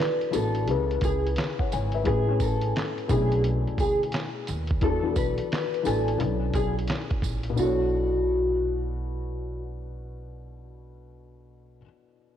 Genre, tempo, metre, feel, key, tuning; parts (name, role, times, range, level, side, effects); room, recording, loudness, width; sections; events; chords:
lo-fi hip hop; 87 BPM; 4/4; swing 66% on 16ths; B dorian; A4 = 436 Hz
mellow electric guitar; melody; 0.0-9.6 s; F#4 to B4; -28 LUFS; equal; lush chorus, low-pass filter
felt-muted upright piano; accompaniment; 0.0-12.4 s; A2 to G#5; -30 LUFS; left 7 dB; cassette tape, low-pass filter
lo-fi sampler-style drum kit; drums; 0.0-7.6 s; handclaps, hi-hat, kick drum, snare drum; -30 LUFS; right 1 dB; vintage 12-bit sampler grit, cassette tape
tambourine; percussion; 0.3-7.9 s; -45 LUFS; right 12 dB
upright bass; bass; 0.4-11.8 s; G#1 to E2; -29 LUFS; right 1 dB
light reverb, small room ambience; home recording on cassette; -23 LUFS; side -10 dB against mid
0.0-7.6 A section; 7.6-10.3 B section
0.0 E7sus4; 0.7 C#m7; 2.1 Amaj9; 3.1 Bm11; 4.8 E7sus4; 6.2 Bm11